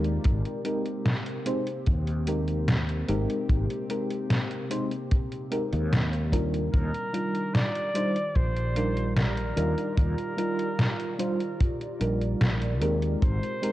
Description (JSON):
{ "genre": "vaporwave", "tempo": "74 BPM", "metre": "4/4", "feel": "straight", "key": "Eb major", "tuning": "A4 = 439 Hz", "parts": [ { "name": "mellow FM electric piano", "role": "accompaniment", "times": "0.0-13.7 s", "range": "G3 to C5", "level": "-30 LUFS", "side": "equal", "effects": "tremolo, lush chorus, tape echo" }, { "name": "warbly tape-like pad", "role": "sustained chords", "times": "0.0-13.7 s", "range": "C3 to D5", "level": "-37 LUFS", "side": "right 1 dB", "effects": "chorus, built-in reverb, phaser" }, { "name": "fretless electric bass", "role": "bass", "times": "0.0-13.4 s", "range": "Ab1 to Eb2", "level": "-28 LUFS", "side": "equal", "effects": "tube saturation, ensemble chorus" }, { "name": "detuned 8-bit digital drum machine", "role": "drums", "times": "0.0-13.7 s", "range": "hi-hat, snare drum", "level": "-28 LUFS", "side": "equal", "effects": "vintage 12-bit sampler grit, gated reverb" }, { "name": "kick drum", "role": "drums", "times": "0.3-13.4 s", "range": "none", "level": "-25 LUFS", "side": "equal", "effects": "vintage 12-bit sampler grit" }, { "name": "clear flugelhorn", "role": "melody", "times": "6.7-13.7 s", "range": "Bb4 to D5", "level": "-33 LUFS", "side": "equal", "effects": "tape echo" } ], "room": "light reverb, small room ambience", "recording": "cassette tape", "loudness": "-25 LUFS", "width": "side -15 dB against mid", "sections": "0.0-13.7 A section", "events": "none", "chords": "0.2 Abmaj9; 6.7 Ebmaj9; 13.2 Abmaj9" }